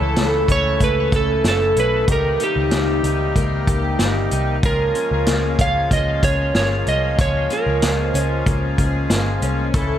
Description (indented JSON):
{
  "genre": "dream pop",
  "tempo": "94 BPM",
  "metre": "4/4",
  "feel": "straight",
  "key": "Db lydian",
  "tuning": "A4 = 440 Hz",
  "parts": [
    { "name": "electric slide guitar", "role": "melody", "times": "0.0-8.4 s", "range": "G4 to F5", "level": "-21 LUFS", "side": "right 2 dB", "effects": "ping-pong delay" },
    { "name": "accordion", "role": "sustained chords", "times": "0.0-10.0 s", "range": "C3 to A4", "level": "-26 LUFS", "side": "equal", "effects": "none" },
    { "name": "fingerpicked twelve-string acoustic guitar", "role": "arpeggios", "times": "0.0-10.0 s", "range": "Eb3 to A4", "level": "-24 LUFS", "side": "left 3 dB", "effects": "analog chorus, ping-pong delay" },
    { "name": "vintage muted picked electric bass", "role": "bass", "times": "0.0-10.0 s", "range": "Gb1 to C#2", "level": "-21 LUFS", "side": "equal", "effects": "none" },
    { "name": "vibraphone with soft mallets", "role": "texture", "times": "0.0-2.1, 7.1-10.0 s", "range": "C5 to Eb5", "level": "-35 LUFS", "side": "equal", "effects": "none" },
    { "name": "vintage drum kit", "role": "drums", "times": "0.2-9.9 s", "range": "hi-hat, kick drum, snare drum", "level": "-21 LUFS", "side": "equal", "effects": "none" }
  ],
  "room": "light reverb",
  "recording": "none",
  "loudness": "-16 LUFS",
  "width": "side -10 dB against mid",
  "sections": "0.0-10.0 A section",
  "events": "none",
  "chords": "0.0 A/C#; 2.1 Cm7/Db; 4.6 Db6",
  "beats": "0.16 0.80 1.44 | 2.08 2.72 3.36 3.99 | 4.63 5.27 5.91 6.55 | 7.19 7.82 8.46 9.10 | 9.74"
}